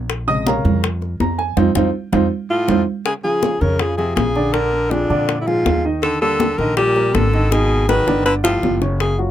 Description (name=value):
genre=Afro-Cuban jazz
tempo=162 BPM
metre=4/4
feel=straight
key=unclear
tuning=A4 = 440 Hz
part: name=upright bass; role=bass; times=0.0-9.3 s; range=Gb1 to Bb2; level=-21 LUFS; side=equal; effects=none
part: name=bongos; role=percussion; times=0.1-9.2 s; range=none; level=-25 LUFS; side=left 6 dB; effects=none
part: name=congas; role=percussion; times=0.1-9.3 s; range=none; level=-23 LUFS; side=right 3 dB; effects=none
part: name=dark grand piano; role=accompaniment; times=0.3-9.3 s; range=C3 to Eb6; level=-21 LUFS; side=right 1 dB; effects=none
part: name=breathy alto saxophone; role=melody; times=2.5-9.2 s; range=D4 to Cb5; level=-19 LUFS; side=equal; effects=none
part: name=breathy baritone saxophone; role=second line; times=2.5-9.2 s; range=F2 to Eb3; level=-24 LUFS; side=left 3 dB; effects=none
room=little or no reverb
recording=none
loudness=-15 LUFS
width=side -11 dB against mid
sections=0.0-3.1 A section; 3.1-9.3 B section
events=grand piano solo 0.0-3.1; band accent 1.6-3.1; drum fill 1.9-3.1, 7.5-9.0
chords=0.1 Bbm7; 1.6 F7; 3.1 Bbm7; 4.5 Bb7; 6.0 Ebmaj7#11; 7.5 Abm7; 8.3 Gsus2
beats=| 0.10 0.46 0.83 1.20 | 1.57 1.94 2.31 2.69 | 3.06 3.43 3.80 4.17 | 4.54 4.91 5.28 5.66 | 6.03 6.40 6.77 7.14 | 7.51 7.88 8.26 8.63 | 9.00